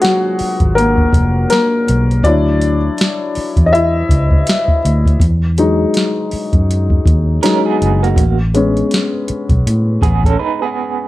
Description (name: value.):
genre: R&B, neo-soul.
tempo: 81 BPM.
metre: 4/4.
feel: swing 61% on 16ths.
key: unclear.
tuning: A4 = 443 Hz.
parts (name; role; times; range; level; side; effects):
dark upright piano; accompaniment; 0.0-11.1 s; F#3 to E5; -16 LUFS; left 2 dB; none.
soft vintage rhythm box; drums; 0.0-10.4 s; hi-hat, kick drum, snare drum; -15 LUFS; equal; overdrive.
vintage muted fingered electric bass; bass; 0.4-10.3 s; E#1 to A2; -14 LUFS; equal; none.
electric guitar through a small old amp; second line; 7.4-11.1 s; A#3 to B4; -17 LUFS; right 7 dB; tremolo.
room: light reverb.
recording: none.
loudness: -11 LUFS.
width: side -16 dB against mid.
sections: 0.0-11.1 A section.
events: upright piano solo 0.0-11.1; break 10.4-11.1.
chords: 0.0 F#maj9; 2.2 Dmaj9; 5.2 Emaj9; 8.2 Amaj9.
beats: 0.01 0.75 1.49 | 2.23 2.98 3.72 4.46 | 5.20 5.94 6.68 7.42 | 8.16 8.90 9.64 10.38.